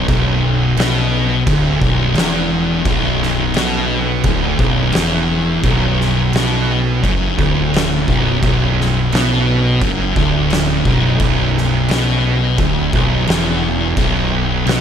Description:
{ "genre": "stoner and doom metal", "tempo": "86 BPM", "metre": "4/4", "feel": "straight", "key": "B minor", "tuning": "A4 = 441 Hz", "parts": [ { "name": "thick fuzz guitar", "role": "riff", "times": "0.0-14.8 s", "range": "B1 to B2", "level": "-18 LUFS", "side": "left 8 dB", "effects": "distortion" }, { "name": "thick fuzz guitar", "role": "riff", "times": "0.0-14.8 s", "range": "B1 to B2", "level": "-18 LUFS", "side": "right 9 dB", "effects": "distortion" }, { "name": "fuzz fingered electric bass", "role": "bass", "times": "0.0-14.8 s", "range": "B0 to B1", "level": "-22 LUFS", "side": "equal", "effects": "overdrive" }, { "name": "oversized low-tuned drum kit", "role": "drums", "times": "0.1-14.8 s", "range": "crash cymbal, kick drum, snare drum", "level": "-20 LUFS", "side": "equal", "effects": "none" } ], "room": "light reverb", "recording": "none", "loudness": "-13 LUFS", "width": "side -8 dB against mid", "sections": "0.0-14.8 A section", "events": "none", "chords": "0.0 Bm" }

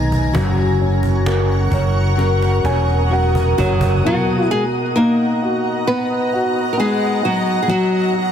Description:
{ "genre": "pop ballad", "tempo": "66 BPM", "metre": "4/4", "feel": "straight", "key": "B major", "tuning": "A4 = 442 Hz", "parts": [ { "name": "warm concert grand piano", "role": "accompaniment", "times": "0.0-8.3 s", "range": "B2 to G#5", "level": "-21 LUFS", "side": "right 1 dB", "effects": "none" }, { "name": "granular cloud pad", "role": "sustained chords", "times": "0.0-8.3 s", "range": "A#4 to D#6", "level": "-23 LUFS", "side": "equal", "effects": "built-in reverb" }, { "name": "fingerpicked plugged-in steel-string acoustic guitar", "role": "arpeggios", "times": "0.0-4.5 s", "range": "F#3 to A#4", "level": "-25 LUFS", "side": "left 9 dB", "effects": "none" }, { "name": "fretless electric bass", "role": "bass", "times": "0.0-4.0 s", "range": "E1 to B1", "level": "-17 LUFS", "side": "equal", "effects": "none" }, { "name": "cajon", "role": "drums", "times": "0.1-4.0 s", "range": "none", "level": "-25 LUFS", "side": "equal", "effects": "none" }, { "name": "nylon-string guitar", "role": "melody", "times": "3.6-8.3 s", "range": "F#3 to B4", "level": "-18 LUFS", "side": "left 1 dB", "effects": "none" } ], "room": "light reverb", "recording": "dense, heavily limited modern master", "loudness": "-15 LUFS", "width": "side -8 dB against mid", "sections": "0.0-4.0 A section; 4.0-8.3 B section", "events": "drum fill 2.2-4.0; grand piano fill 2.2-4.0", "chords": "0.3 F#; 4.0 Bmaj7" }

